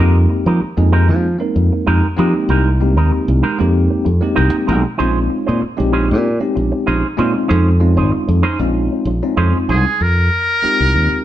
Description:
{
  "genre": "jazz",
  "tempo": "96 BPM",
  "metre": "4/4",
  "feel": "straight",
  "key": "F minor",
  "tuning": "A4 = 440 Hz",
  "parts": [
    { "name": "bell-like tine electric piano", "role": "accompaniment", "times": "0.0-11.2 s", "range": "Ab3 to Bb4", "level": "-19 LUFS", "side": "left 1 dB", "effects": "medium stereo tremolo" },
    { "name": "electric guitar with an envelope filter", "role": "stabs", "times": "0.0-9.9 s", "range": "Ab3 to C5", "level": "-21 LUFS", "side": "right 4 dB", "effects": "none" },
    { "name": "fingered electric bass", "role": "bass", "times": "0.0-11.2 s", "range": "Ab1 to F3", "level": "-15 LUFS", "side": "equal", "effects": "none" },
    { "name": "trumpet with metal mute", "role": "melody", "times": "9.7-11.2 s", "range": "Ab4 to Bb4", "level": "-15 LUFS", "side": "equal", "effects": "none" }
  ],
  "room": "wet stone room reverb, RT60 1.1 s",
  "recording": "band playing live in one room",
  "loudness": "-13 LUFS",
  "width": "side -12 dB against mid",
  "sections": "0.0-10.0 A section; 10.0-11.2 B section",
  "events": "none",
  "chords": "0.0 Fm11; 5.0 Bbm11; 10.0 Fm9"
}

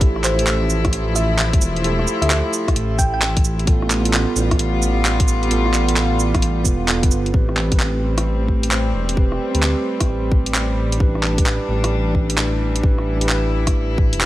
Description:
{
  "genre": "future garage",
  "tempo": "131 BPM",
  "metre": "4/4",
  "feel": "swing 65% on 16ths",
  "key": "A minor",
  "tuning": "A4 = 440 Hz",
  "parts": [
    { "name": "mellow tine electric piano", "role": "accompaniment", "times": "0.0-14.3 s", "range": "B3 to B4", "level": "-24 LUFS", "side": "right 4 dB", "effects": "sidechain pumping, analog delay" },
    { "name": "rich chamber string section", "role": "sustained chords", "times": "0.0-14.3 s", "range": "E3 to F4", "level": "-25 LUFS", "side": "left 3 dB", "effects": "sidechain pumping" },
    { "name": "dark detuned saw bass", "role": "bass", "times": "0.0-14.3 s", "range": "E1 to D2", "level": "-20 LUFS", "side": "equal", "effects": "sidechain pumping" },
    { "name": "electronic kick drum", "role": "drums", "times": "0.0-14.1 s", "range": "none", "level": "-17 LUFS", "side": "equal", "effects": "none" },
    { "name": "garage drum kit", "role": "drums", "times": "0.0-14.3 s", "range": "cabasa, handclaps, hi-hat, rim click", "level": "-22 LUFS", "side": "right 1 dB", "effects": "none" },
    { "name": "thumb-piano-like synth pluck", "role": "melody", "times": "0.2-3.2 s", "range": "C5 to G5", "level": "-27 LUFS", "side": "equal", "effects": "chorus, analog delay" }
  ],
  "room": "light reverb",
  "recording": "none",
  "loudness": "-16 LUFS",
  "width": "side -15 dB against mid",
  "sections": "0.0-7.3 A section; 7.3-14.3 B section",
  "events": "none",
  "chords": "0.0 Fmaj7; 3.7 G7/A; 7.3 Am9; 11.0 Em7/A"
}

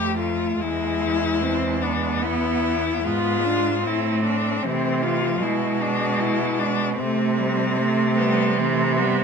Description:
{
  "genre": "classical, lyrical piece for cello ensemble",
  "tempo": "75 BPM",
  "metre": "4/4",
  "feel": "rubato",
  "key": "A minor",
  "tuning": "A4 = 440 Hz",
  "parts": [
    { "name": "rich cello", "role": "melody", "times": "0.0-9.2 s", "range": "B3 to G4", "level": "-24 LUFS", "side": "left 8 dB", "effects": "none" },
    { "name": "rich cello", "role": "second line", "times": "0.0-9.2 s", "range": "G3 to D4", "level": "-28 LUFS", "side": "right 12 dB", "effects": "none" },
    { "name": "warm cello", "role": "accompaniment", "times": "0.0-9.2 s", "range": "E3 to C4", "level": "-26 LUFS", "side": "left 1 dB", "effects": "none" },
    { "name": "rich cello", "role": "bass", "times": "0.0-9.2 s", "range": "E2 to C3", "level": "-25 LUFS", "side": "right 4 dB", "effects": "none" }
  ],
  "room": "light reverb",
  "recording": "close, detailed microphones",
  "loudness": "-20 LUFS",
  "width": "side -6 dB against mid",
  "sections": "0.0-9.2 A section",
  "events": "none",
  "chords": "0.0 Dm (rootless); 0.6 E7; 3.9 Am; 5.4 Bm6; 7.0 Am/C"
}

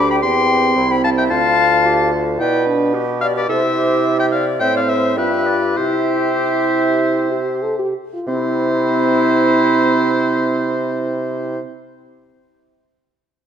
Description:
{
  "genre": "quick classical-period movement for wind quintet",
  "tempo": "92-112 BPM",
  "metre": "4/4",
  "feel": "straight",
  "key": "C major",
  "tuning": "A4 = 436 Hz",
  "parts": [
    { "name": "concert flute", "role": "melody", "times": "0.0-11.6 s", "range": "E4 to B5", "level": "-21 LUFS", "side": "left 6 dB", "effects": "none" },
    { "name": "clear oboe", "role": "second line", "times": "0.0-11.6 s", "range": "B4 to C6", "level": "-20 LUFS", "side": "left 2 dB", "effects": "none" },
    { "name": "warm French horn", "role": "accompaniment", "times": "0.0-11.6 s", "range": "C4 to A4", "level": "-21 LUFS", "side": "right 1 dB", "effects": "none" },
    { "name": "warm clarinet", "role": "accompaniment", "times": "0.0-11.6 s", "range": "E4 to E5", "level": "-22 LUFS", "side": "right 8 dB", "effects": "none" },
    { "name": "clear bassoon", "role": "bass", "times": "0.0-11.6 s", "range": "C2 to C3", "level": "-21 LUFS", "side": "right 3 dB", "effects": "none" }
  ],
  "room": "wet scoring stage reverb, RT60 1.9 s",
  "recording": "dark, warm production",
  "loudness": "-14 LUFS",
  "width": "side -8 dB against mid",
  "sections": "0.0-8.3 A section; 8.3-10.8 B section",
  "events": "slowing down 2.4-8.3",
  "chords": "0.2 C/E; 1.3 Dm; 2.4 G/B; 3.5 C; 4.6 Am; 5.2 G7; 5.8 C"
}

